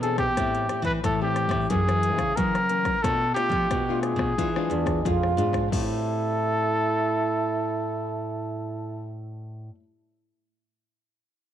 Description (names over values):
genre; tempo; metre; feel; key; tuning
samba and choro; 90 BPM; 4/4; straight; A minor; A4 = 440 Hz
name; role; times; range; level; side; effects
breathy trumpet; melody; 0.0-9.1 s; G4 to B4; -26 LUFS; equal; slapback echo
nylon-string guitar; accompaniment; 0.0-9.8 s; F#2 to G#4; -32 LUFS; left 9 dB; none
nylon-string guitar; bass; 0.0-9.7 s; E2 to F#3; -29 LUFS; right 1 dB; none
80s electronic pad drums; drums; 0.0-5.9 s; crash cymbal, hi-hat, kick drum, rim click; -32 LUFS; left 2 dB; none
mellow trombone; second line; 4.7-9.2 s; D4 to F4; -29 LUFS; right 6 dB; none
room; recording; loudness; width
moderate echo chamber reverb, RT60 1.7 s, small room ambience; 1960s-style stereo with parts hard left and right; -22 LUFS; side -10 dB against mid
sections
0.0-5.7 A section; 5.7-8.4 B section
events
none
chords
0.4 Am7; 1.7 F#7; 3.0 Bm7b5; 4.4 E7b9; 5.7 Am7